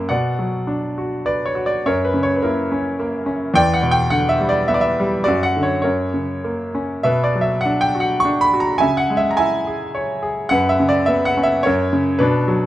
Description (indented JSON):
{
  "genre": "classical, lyrical solo piano",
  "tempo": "105 BPM",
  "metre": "3/4",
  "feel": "rubato",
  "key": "B harmonic minor",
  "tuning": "A4 = 440 Hz",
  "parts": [
    { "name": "bright grand piano", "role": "solo", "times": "0.0-12.7 s", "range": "E2 to C#6", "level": "-16 LUFS", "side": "equal", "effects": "none" }
  ],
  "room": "light reverb",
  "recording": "close, detailed microphones",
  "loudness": "-16 LUFS",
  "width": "side -14 dB against mid",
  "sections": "0.1-12.7 A section",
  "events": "none",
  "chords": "0.1 Bm; 1.9 F#7; 3.5 Em7; 5.3 Dmaj7/F#; 5.8 F#; 7.0 Bm; 8.8 C#m; 10.5 F#sus4; 11.6 F#",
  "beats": "| 0.10 0.69 1.27 | 1.86 2.44 2.99 | 3.55 4.11 4.68 | 5.26 5.84 6.44 | 7.05 7.64 8.24 | 8.82 9.38 9.95 | 10.52 11.08 11.64 | 12.20"
}